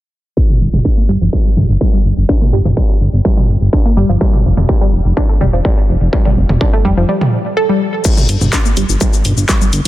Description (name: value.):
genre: melodic techno.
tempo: 125 BPM.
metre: 4/4.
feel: straight.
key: unclear.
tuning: A4 = 440 Hz.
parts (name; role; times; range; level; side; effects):
analog pluck; arpeggios; 0.4-9.7 s; F3 to A4; -18 LUFS; right 1 dB; chorus, phaser, sidechain pumping, digital delay.
electronic kick drum; drums; 0.4-9.6 s; none; -13 LUFS; equal; distortion.
techno drum kit; drums; 0.5-9.9 s; crash cymbal, handclaps, hi-hat, shaker, toms; -18 LUFS; equal; sidechain pumping on toms, low-pass filter on toms, sidechain pumping on cymbals, low-pass filter on cymbals, sidechain pumping on perc, low-pass filter on perc, sidechain pumping on hats, low-pass filter on hats, low-pass filter on snare, low-pass filter on room.
fat analog bass; bass; 0.6-9.9 s; F1 to G1; -13 LUFS; equal; sidechain pumping.
room: little or no reverb.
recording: dense, heavily limited modern master, low-pass filter.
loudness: -10 LUFS.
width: side -15 dB against mid.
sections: 0.4-8.0 A section; 8.0-9.9 B section.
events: filter sweep on drum 0.4-8.0; filter sweep on analog synth bass 0.4-8.0; filter sweep on synth arpeggio sound 0.4-8.0, 8.0-9.9; filter sweep 0.4-8.0; break 7.1-8.0.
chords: 0.4 N.C.; 4.2 Fsus2; 8.0 N.C..